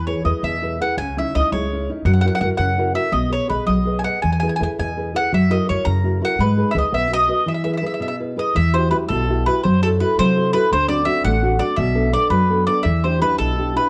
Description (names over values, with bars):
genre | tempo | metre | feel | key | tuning
italian folk, Italian serenade | 111 BPM (dotted quarters) | 6/8 | rubato | E major, E minor from 8.6 s | A4 = 441 Hz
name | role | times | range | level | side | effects
mandolin | melody | 0.0-13.9 s | A4 to A#5 | -23 LUFS | equal | plate reverb
nylon-string guitar | accompaniment | 0.0-13.9 s | B2 to D#5 | -23 LUFS | equal | none
upright bass | bass | 0.0-13.8 s | A1 to C3 | -24 LUFS | equal | none
room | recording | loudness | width
moderate studio reverb, RT60 0.6 s | worn, warbling old tape, cassette tape, warbly pitch drift | -19 LUFS | mono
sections
0.0-8.6 A section; 8.6-13.9 B section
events
break 7.5-8.6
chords
0.0 E; 1.0 C#madd9; 2.1 F#7; 3.1 B6; 4.2 E; 5.3 F#7; 6.4 G#m; 6.9 B; 7.5 E; 8.6 Emadd9; 9.7 F#m7b5; 10.7 D7; 11.8 Bm7; 12.9 Em7